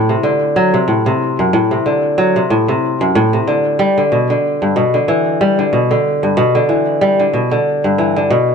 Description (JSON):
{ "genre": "folktronica", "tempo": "93 BPM", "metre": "4/4", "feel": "swing 56% on 16ths", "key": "unclear", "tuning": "A4 = 441 Hz", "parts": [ { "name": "kora", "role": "solo", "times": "0.0-8.5 s", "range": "F#2 to G3", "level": "-12 LUFS", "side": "equal", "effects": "vintage 12-bit sampler grit" } ], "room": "moderate echo chamber reverb, RT60 1.3 s", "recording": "none", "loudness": "-12 LUFS", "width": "side -6 dB against mid", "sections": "0.0-8.5 A section", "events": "none", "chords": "0.0 D7; 3.8 Em7" }